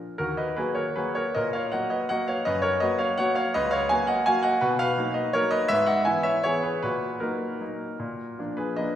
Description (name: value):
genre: classical, piano waltz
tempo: 150-175 BPM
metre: 3/4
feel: rubato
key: Eb minor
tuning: A4 = 441 Hz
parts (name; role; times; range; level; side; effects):
- clear concert grand piano; solo; 0.0-9.0 s; Db2 to Ab5; -23 LUFS; equal; none
room: wet concert hall reverb, RT60 2.0 s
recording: heard from further back in the room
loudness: -23 LUFS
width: side -10 dB against mid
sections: 0.2-9.0 A section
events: none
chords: 0.2 Ebm; 2.5 Gb; 4.6 Bmaj7; 5.7 E/G#; 6.8 Ebm/Bb; 8.0 Bb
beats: | 0.20 0.58 0.97 | 1.35 1.72 2.10 | 2.46 2.81 3.18 | 3.55 3.90 4.27 | 4.62 4.98 5.34 | 5.69 6.05 6.44 | 6.83 7.21 7.61 | 8.00 8.39 8.78